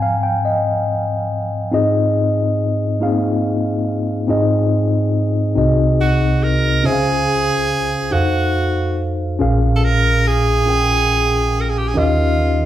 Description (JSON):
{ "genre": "gospel", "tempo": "47 BPM (dotted quarters)", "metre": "6/8", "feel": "straight", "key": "Ab major", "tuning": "A4 = 439 Hz", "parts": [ { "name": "mellow tine electric piano", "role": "accompaniment", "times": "0.0-12.7 s", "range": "Bb1 to Bb5", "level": "-16 LUFS", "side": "equal", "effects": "medium stereo tremolo" }, { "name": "edgy tenor saxophone", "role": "melody", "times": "6.0-12.7 s", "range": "F4 to Bb4", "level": "-18 LUFS", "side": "right 2 dB", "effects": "none" } ], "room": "wet large studio reverb, RT60 0.9 s", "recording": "band playing live in one room", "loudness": "-15 LUFS", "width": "side -12 dB against mid", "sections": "0.0-1.7 A section; 1.7-4.3 B section; 4.3-12.7 C section", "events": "tine electric piano solo 0.0-1.7", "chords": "0.0 Ab6; 5.6 Ab7/C; 6.8 Dbmaj7; 8.1 F7b9; 9.4 Bbm7; 12.0 Eb7" }